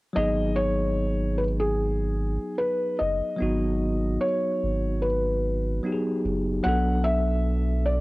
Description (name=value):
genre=hip hop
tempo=74 BPM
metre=4/4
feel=swing 57% on 16ths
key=G# minor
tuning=A4 = 439 Hz
part: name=bell-like tine electric piano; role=accompaniment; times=0.1-8.0 s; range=F#3 to A4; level=-28 LUFS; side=equal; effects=medium stereo tremolo, low-pass filter, cassette tape
part: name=felt-muted upright piano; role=melody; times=0.2-8.0 s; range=G#4 to F#5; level=-27 LUFS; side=equal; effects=low-pass filter
part: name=soft dub sub bass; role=bass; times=0.2-8.0 s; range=F#1 to B1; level=-26 LUFS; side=equal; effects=none
room=light reverb, studio ambience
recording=home recording on cassette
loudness=-23 LUFS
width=side -21 dB against mid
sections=0.2-8.0 A section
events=none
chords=0.2 G#m7; 6.6 Bm7